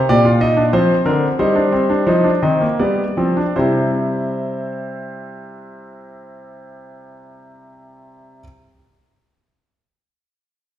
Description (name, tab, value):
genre	classical, baroque-style 3-part fugue for grand piano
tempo	76-95 BPM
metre	3/4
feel	straight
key	unclear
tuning	A4 = 444 Hz
part	clear concert grand piano	solo	0.0-8.4 s	Bb2 to Eb5	-15 LUFS	equal	none
room	wet recital hall reverb, RT60 1.6 s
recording	heard from further back in the room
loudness	-14 LUFS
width	side -11 dB against mid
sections	0.0-3.6 A section; 3.6-8.3 B section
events	slowing down 0.0-3.6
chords	0.0 Eb; 0.7 F5; 1.4 Cm/G; 2.8 G7; 3.6 C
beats	0.09 0.73 | 1.39 2.08 2.80 | 3.56 4.35 5.14 | 5.92 6.71 7.49